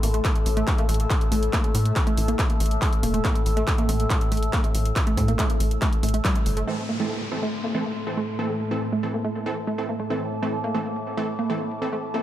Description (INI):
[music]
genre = driving peak-time techno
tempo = 140 BPM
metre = 4/4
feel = straight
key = A minor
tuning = A4 = 435 Hz
[part]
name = analog pluck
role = riff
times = 0.0-12.2 s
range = G3 to Bb3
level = -29 LUFS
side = right 2 dB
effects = chorus, overdrive, sidechain pumping, tape echo
[part]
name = tight sequencer bass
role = bass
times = 0.0-6.6 s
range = E1 to A2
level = -24 LUFS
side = equal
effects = sidechain pumping
[part]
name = overtone-sweeping drone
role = drone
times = 0.0-12.2 s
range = A2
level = -33 LUFS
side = equal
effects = chorus, built-in reverb, phaser, sidechain pumping
[part]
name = techno drum kit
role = drums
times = 0.0-6.7 s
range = handclaps, hi-hat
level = -30 LUFS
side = right 1 dB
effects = overdrive, studio reverb
[part]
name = warbly tape-like pad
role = texture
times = 0.0-12.2 s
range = A4 to E6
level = -32 LUFS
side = left 3 dB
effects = chorus, built-in reverb, sidechain pumping
[part]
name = electronic kick drum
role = drums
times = 0.2-6.3 s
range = none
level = -23 LUFS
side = equal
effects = distortion, overdrive, studio reverb
[part]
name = supersaw stab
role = stabs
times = 6.7-12.2 s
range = E3 to A4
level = -30 LUFS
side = right 1 dB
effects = vintage 12-bit sampler grit, sidechain pumping, low-pass filter, analog delay
[part]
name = downlifter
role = sound effects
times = 6.7-10.1 s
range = none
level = -37 LUFS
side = equal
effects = none
[sound]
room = light reverb, digital ambience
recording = echo-heavy mix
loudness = -21 LUFS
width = side -12 dB against mid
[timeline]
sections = 0.0-6.7 A section; 6.7-12.2 B section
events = band accent 6.2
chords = 0.0 A5; 6.7 Am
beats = 0.25 0.68 1.10 | 1.53 1.96 2.39 2.82 | 3.25 3.67 4.10 4.53 | 4.96 5.39 5.82 6.25 | 6.67 7.10 7.53 7.96 | 8.39 8.82 9.25 9.68 | 10.10 10.53 10.96 11.39 | 11.82